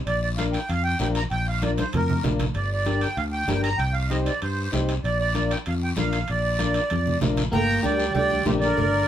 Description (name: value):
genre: latin, cumbia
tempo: 193 BPM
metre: 4/4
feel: straight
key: unclear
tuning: A4 = 439 Hz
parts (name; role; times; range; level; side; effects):
- accordion; melody; 0.1-9.1 s; G4 to Bb5; -26 LUFS; right 2 dB; light tremolo tuning
- fingered electric bass; bass; 0.1-9.0 s; G1 to G2; -26 LUFS; equal; none
- congas; percussion; 0.1-8.9 s; none; -30 LUFS; right 2 dB; none
- guiro; percussion; 0.1-9.1 s; none; -37 LUFS; left 4 dB; none
- timbales and cowbell; percussion; 0.1-8.9 s; none; -36 LUFS; right 3 dB; none
- overdriven combo organ; accompaniment; 0.4-8.7 s; D4 to C5; -28 LUFS; left 4 dB; none
- electric guitar at the edge of break-up; second line; 7.5-9.1 s; D3 to Bb3; -27 LUFS; right 1 dB; none
room: moderate studio ambience, RT60 0.5 s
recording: band playing live in one room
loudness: -21 LUFS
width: side -10 dB against mid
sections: 0.0-7.5 A section; 7.5-9.1 B section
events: drum fill 1.6-2.6, 6.6-7.5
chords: 0.1 Bb; 2.6 Gm; 3.8 Cm; 5.0 Bb; 7.5 Gm